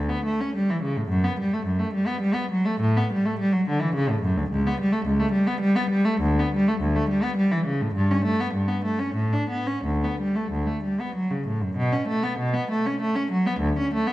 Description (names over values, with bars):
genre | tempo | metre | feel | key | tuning
classical, baroque-style suite movement for unaccompanied cello | 80-110 BPM | 3/4 | rubato | D major from 4.5 s | A4 = 440 Hz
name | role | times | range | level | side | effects
rich cello | solo | 0.0-14.1 s | C#2 to D4 | -22 LUFS | equal | none
room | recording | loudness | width
wet recital hall reverb, RT60 1.6 s | dark, warm production, nothing above 11.0 kHz | -22 LUFS | side -16 dB against mid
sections
0.0-11.8 A section; 11.8-14.1 A section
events
none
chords
none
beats
0.00 0.57 | 1.12 1.67 2.22 | 2.81 3.39 3.95 | 4.51 5.07 5.63 | 6.22 6.81 7.38 | 7.96 8.54 9.15 | 9.84 10.53 11.17 | 11.80 12.39 12.98 | 13.58